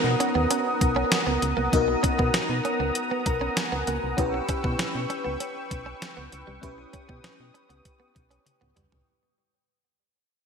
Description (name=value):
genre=1980s-style pop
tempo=98 BPM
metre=4/4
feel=straight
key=unclear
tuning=A4 = 441 Hz
part: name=FM electric piano with soft pad layer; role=accompaniment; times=0.0-9.1 s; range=B3 to A#5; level=-29 LUFS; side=left 2 dB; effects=chorus, phaser
part: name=warm analog pad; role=sustained chords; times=0.0-9.1 s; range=B3 to E6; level=-29 LUFS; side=equal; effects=chorus
part: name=solid FM bass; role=bass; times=0.0-9.0 s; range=B1 to B2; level=-30 LUFS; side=equal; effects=none
part: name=direct-recorded clean electric guitar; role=riff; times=0.2-8.9 s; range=G3 to C#4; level=-32 LUFS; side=right 4 dB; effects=wide subtle chorus, ping-pong delay
part: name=clean 12-bit digital drum machine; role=drums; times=0.2-9.1 s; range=hi-hat, kick drum, snare drum, toms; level=-28 LUFS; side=equal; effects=gated reverb
room=wet lush hall reverb, RT60 2.1 s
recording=bright 1980s-style digital production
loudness=-23 LUFS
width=side -6 dB against mid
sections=0.0-9.1 A section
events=fade-out 0.0-9.1; FM electric piano fill 3.0-4.2; drum fill 8.5-9.1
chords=0.0 Bmaj7; 4.2 Em6/B